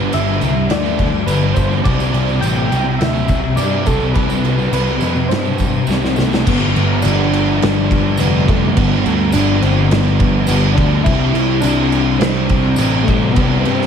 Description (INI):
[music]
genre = rock, shoegaze and dream pop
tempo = 104 BPM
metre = 4/4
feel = straight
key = unclear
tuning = A4 = 440 Hz
[part]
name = soft struck synth lead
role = melody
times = 0.0-13.9 s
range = A3 to G5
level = -21 LUFS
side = left 1 dB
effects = chorus, phaser, ping-pong delay
[part]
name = crunchy overdriven guitar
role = riff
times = 0.0-13.9 s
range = G2 to D4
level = -22 LUFS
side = right 8 dB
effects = reverse reverb
[part]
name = thick fuzz guitar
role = riff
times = 0.0-13.9 s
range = G2 to C4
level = -19 LUFS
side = left 6 dB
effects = distortion, analog chorus
[part]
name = fuzz picked electric bass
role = bass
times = 0.0-13.9 s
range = F1 to G2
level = -18 LUFS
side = right 1 dB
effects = overdrive
[part]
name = loose indie drum kit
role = drums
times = 0.1-13.9 s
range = crash cymbal, kick drum, snare drum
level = -19 LUFS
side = right 1 dB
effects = none
[part]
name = tambourine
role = percussion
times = 0.1-12.9 s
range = none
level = -36 LUFS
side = left 5 dB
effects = none
[sound]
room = moderate lush hall reverb, RT60 1.9 s, small room ambience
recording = dreamy mix soaked in reverb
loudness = -13 LUFS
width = side -7 dB against mid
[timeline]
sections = 0.0-6.5 A section; 6.5-13.9 B section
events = drum fill 5.9-6.5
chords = 0.0 G7; 1.9 Csus2; 6.5 G7; 11.1 Csus2